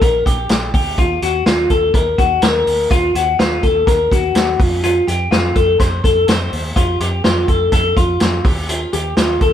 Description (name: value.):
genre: jangly indie pop.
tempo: 125 BPM.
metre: 4/4.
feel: straight.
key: unclear.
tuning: A4 = 444 Hz.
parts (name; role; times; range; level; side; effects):
twelve-string electric guitar; arpeggios; 0.0-9.5 s; F4 to C5; -16 LUFS; left 2 dB; none.
vintage muted fingered electric bass; bass; 0.0-9.5 s; Bb1 to F2; -22 LUFS; equal; none.
vintage drum kit; drums; 0.0-9.5 s; hi-hat, kick drum, snare drum; -16 LUFS; equal; none.
room: light reverb.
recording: band playing live in one room.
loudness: -13 LUFS.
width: side -10 dB against mid.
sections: 0.0-9.5 A section.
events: none.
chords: 0.0 Bb6; 1.0 Ebmadd9; 4.6 F; 8.4 Eb.